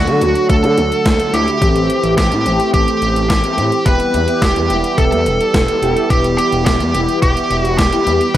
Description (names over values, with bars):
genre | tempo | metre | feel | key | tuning
synth-pop | 107 BPM | 4/4 | straight | E minor | A4 = 440 Hz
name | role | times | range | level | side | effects
smooth overdriven lead guitar | melody | 0.0-8.4 s | F#4 to B4 | -17 LUFS | right 1 dB | tape echo
mellow synth brass | accompaniment | 0.0-8.4 s | A3 to G4 | -19 LUFS | equal | chorus, phaser
warm analog pad | sustained chords | 0.0-8.4 s | D3 to G4 | -22 LUFS | equal | chorus
smooth gliding synth bass | bass | 0.0-8.4 s | E1 to D3 | -19 LUFS | equal | none
clean 12-bit digital drum machine | drums | 0.1-8.4 s | hi-hat, kick drum, snare drum | -17 LUFS | equal | overdrive, gated reverb
room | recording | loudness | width
light reverb, digital ambience | none | -12 LUFS | side -12 dB against mid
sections
0.0-8.4 A section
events
none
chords
0.0 D; 1.6 Am7; 3.9 Em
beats
0.50 1.06 | 1.62 2.18 2.74 3.30 | 3.86 4.42 4.98 5.54 | 6.10 6.66 7.22 7.79 | 8.35